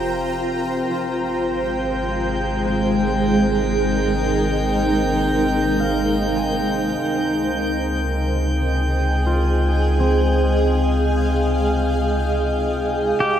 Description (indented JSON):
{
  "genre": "ambient",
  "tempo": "free time",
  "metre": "none",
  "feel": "none",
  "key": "unclear",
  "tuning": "A4 = 439 Hz",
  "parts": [
    { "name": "granular cloud pad", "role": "sustained chords", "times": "0.0-13.4 s", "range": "Ab3 to Bb5", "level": "-20 LUFS", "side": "right 1 dB", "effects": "built-in reverb" },
    { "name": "warm sub bass", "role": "bass", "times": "0.0-13.4 s", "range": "F1 to Db2", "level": "-23 LUFS", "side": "equal", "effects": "none" },
    { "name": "analog drone", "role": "drone", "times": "0.0-13.2 s", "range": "C3 to C4", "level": "-30 LUFS", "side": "left 1 dB", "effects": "chorus" },
    { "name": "concert harp", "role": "arpeggios", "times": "0.9-13.1 s", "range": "C4 to Ab5", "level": "-29 LUFS", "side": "left 3 dB", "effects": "diffuse ambient delay" },
    { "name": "drifting glass-harmonics texture", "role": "texture", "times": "1.2-13.2 s", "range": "G5 to G6", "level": "-27 LUFS", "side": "equal", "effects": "chorus, built-in reverb" },
    { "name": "pedal steel guitar", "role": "melody", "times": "13.2-13.4 s", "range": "G4", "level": "-17 LUFS", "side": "equal", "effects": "none" }
  ],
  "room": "wet cathedral reverb, RT60 5.5 s",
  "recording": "in a vast, echoing space",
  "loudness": "-18 LUFS",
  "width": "side -10 dB against mid",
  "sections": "0.0-13.2 A section",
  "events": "fade-in on harp 0.0-13.2; fade-in on synth drone 0.0-13.2",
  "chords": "0.0 Fsus4; 0.9 Abmaj7; 7.0 Dbmaj7"
}